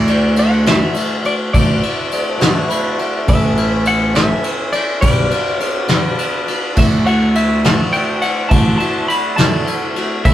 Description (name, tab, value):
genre	folk rock and heartland rock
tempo	69 BPM (dotted quarters)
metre	6/8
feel	straight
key	D major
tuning	A4 = 438 Hz
part	twelve-string electric guitar	melody	0.0-10.3 s	D5 to B5	-20 LUFS	left 2 dB	spring reverb
part	picked plugged-in swing-style acoustic guitar	accompaniment	0.0-10.3 s	B2 to D5	-26 LUFS	left 2 dB	none
part	warm concert grand piano	accompaniment	0.0-10.3 s	C#4 to B5	-28 LUFS	right 2 dB	none
part	hand-pumped harmonium	sustained chords	0.0-10.3 s	C#4 to B4	-25 LUFS	right 1 dB	none
part	picked electric bass	bass	0.0-10.3 s	A1 to D2	-16 LUFS	right 1 dB	none
part	soft brush drum kit	drums	0.1-10.3 s	crash cymbal, kick drum, ride cymbal, snare drum	-16 LUFS	equal	none
part	tambourine	percussion	0.4-10.3 s	none	-37 LUFS	right 5 dB	none
room	moderate studio ambience, RT60 0.5 s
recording	rough rehearsal-room recording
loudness	-13 LUFS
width	side -12 dB against mid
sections	0.0-10.3 A section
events	grand piano fill 2.4-3.3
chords	0.0 Dadd9; 3.3 Aadd9; 5.0 Gmaj7/B; 6.8 Dadd9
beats	0.67 | 1.55 2.42 | 3.29 4.16 | 5.03 5.90 | 6.77 7.64 | 8.51 9.38 | 10.25